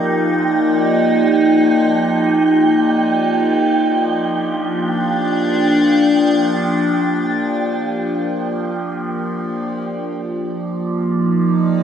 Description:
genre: ambient.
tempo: free time.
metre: none.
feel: none.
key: unclear.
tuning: A4 = 440 Hz.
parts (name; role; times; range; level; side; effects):
evolving wavetable pad; sustained chords; 0.0-11.8 s; F3 to D5; -16 LUFS; equal; phaser, built-in reverb.
analog drone; drone; 0.0-10.0 s; Bb3 to F4; -23 LUFS; equal; chorus.
wind-like tuned noise texture; texture; 0.0-9.9 s; G5; -23 LUFS; right 5 dB; built-in reverb.
room: wet plate reverb, RT60 2.4 s.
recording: nothing above 10.7 kHz.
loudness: -14 LUFS.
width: side -8 dB against mid.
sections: 0.0-9.9 A section; 9.9-11.8 B section.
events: none.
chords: 0.0 Ebmaj9; 3.6 Bb6; 9.9 Ebmaj9.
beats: free time.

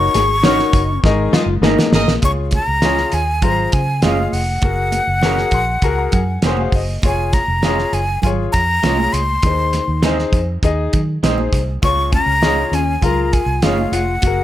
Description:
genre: uptempo 1960s-style soul.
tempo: 100 BPM.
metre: 4/4.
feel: straight.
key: Db major.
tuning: A4 = 440 Hz.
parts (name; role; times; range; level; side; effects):
breathy jazz flute; melody; 0.0-14.4 s; F5 to Db6; -19 LUFS; left 1 dB; none.
clear concert grand piano; accompaniment; 0.0-14.4 s; Ab2 to C6; -22 LUFS; left 5 dB; none.
vintage hollow-body jazz guitar; riff; 0.0-2.2, 12.1-14.4 s; Bb3 to Ab4; -22 LUFS; left 9 dB; none.
vintage muted fingered electric bass; bass; 0.0-14.4 s; F1 to Eb3; -20 LUFS; right 1 dB; none.
cloth-damped thuddy drum kit; drums; 0.1-14.4 s; hi-hat, kick drum, snare drum; -18 LUFS; right 1 dB; none.
congas; percussion; 0.2-14.4 s; none; -27 LUFS; right 5 dB; none.
electric guitar through a small old amp; stabs; 0.4-13.8 s; Gb3 to Bb4; -24 LUFS; right 8 dB; spring reverb.
warm horn section; second line; 1.3-2.1 s; Ab4 to Eb5; -21 LUFS; right 3 dB; none.
room: studio reverb.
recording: none.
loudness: -14 LUFS.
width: side -13 dB against mid.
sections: 0.0-2.2 A section; 2.2-14.4 B section.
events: band accent 0.0-2.2; drum fill 1.0-2.2; grand piano fill 5.2-7.0.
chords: 0.0 Gb6; 1.0 Absus2; 2.2 Db; 4.6 Gbadd9; 7.0 Db/F; 9.4 Ab/Eb; 11.8 Db.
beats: 0.45 1.04 1.64 | 2.24 2.83 3.43 4.03 | 4.63 5.23 5.83 6.43 | 7.03 7.63 8.23 8.83 | 9.43 10.03 10.63 11.23 | 11.83 12.43 13.03 13.63 | 14.23.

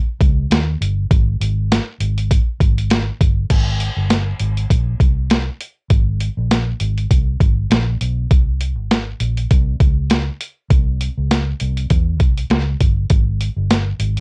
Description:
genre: indie pop, bedroom pop.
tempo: 100 BPM.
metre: 4/4.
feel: swing 55% on 16ths.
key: Ab major.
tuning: A4 = 438 Hz.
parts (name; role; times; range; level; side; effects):
vintage muted fingered electric bass; bass; 0.2-14.2 s; G1 to E2; -18 LUFS; equal; none.
boom bap sampler-style drum kit; drums; 0.2-14.2 s; crash cymbal, hi-hat, kick drum, snare drum; -15 LUFS; equal; cassette tape.
room: light reverb.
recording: home recording on cassette.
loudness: -14 LUFS.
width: side -36 dB against mid.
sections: 0.0-3.5 A section; 3.5-14.2 B section.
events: none.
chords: none.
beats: 0.51 | 1.11 1.71 2.31 2.91 | 3.51 4.11 4.71 5.31 | 5.91 6.51 7.11 7.71 | 8.31 8.91 9.51 10.11 | 10.71 11.31 11.91 12.51 | 13.11 13.71.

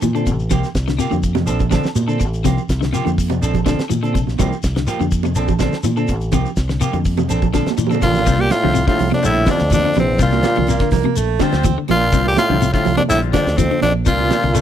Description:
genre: afrobeat.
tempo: 124 BPM.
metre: 4/4.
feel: straight.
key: C mixolydian.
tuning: A4 = 439 Hz.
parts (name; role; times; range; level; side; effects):
electric guitar at the edge of break-up; arpeggios; 0.0-14.6 s; Bb2 to E3; -23 LUFS; left 9 dB; analog chorus.
fingered electric bass; bass; 0.0-14.6 s; A1 to Bb2; -20 LUFS; equal; none.
damped 70s drum kit; drums; 0.0-14.6 s; hi-hat, kick drum, snare drum; -21 LUFS; equal; none.
congas; percussion; 0.0-14.4 s; none; -23 LUFS; right 13 dB; none.
shekere; percussion; 0.0-14.6 s; none; -26 LUFS; left 3 dB; none.
semi-hollow electric guitar; stabs; 0.1-8.0 s; F3 to A4; -25 LUFS; right 5 dB; none.
raspy tenor saxophone; melody; 8.0-14.6 s; C4 to G4; -18 LUFS; left 1 dB; none.
growling trombone; second line; 8.0-14.6 s; E2 to Bb2; -23 LUFS; right 2 dB; none.
combo organ; accompaniment; 8.3-14.4 s; D3 to F4; -27 LUFS; left 12 dB; none.
breathy baritone saxophone; second line; 10.7-14.6 s; A3 to C4; -22 LUFS; right 11 dB; none.
room: small room reverb.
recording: dry, close 1970s-style studio recording.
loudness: -15 LUFS.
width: side -10 dB against mid.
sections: 0.0-8.3 A section; 8.3-14.6 B section.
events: drum fill 7.5-8.3.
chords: 0.0 Bbmaj9; 0.5 C7sus4; 1.5 Bbmaj9; 2.4 C7sus4; 3.4 Bbmaj9; 4.4 C7sus4; 5.4 Bbmaj9; 6.3 C7sus4; 7.3 Bbmaj9; 8.3 Csus4; 9.2 Bbadd9; 10.2 C7sus4; 11.2 Bbadd9; 12.1 Csus4; 13.1 Bbadd9; 14.1 C7sus4.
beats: 0.02 | 0.51 0.99 1.48 1.96 | 2.44 2.93 3.42 3.90 | 4.38 4.87 5.36 5.84 | 6.32 6.81 7.29 7.78 | 8.26 8.74 9.23 9.71 | 10.20 10.68 11.16 11.64 | 12.13 12.61 13.10 13.58 | 14.06 14.55.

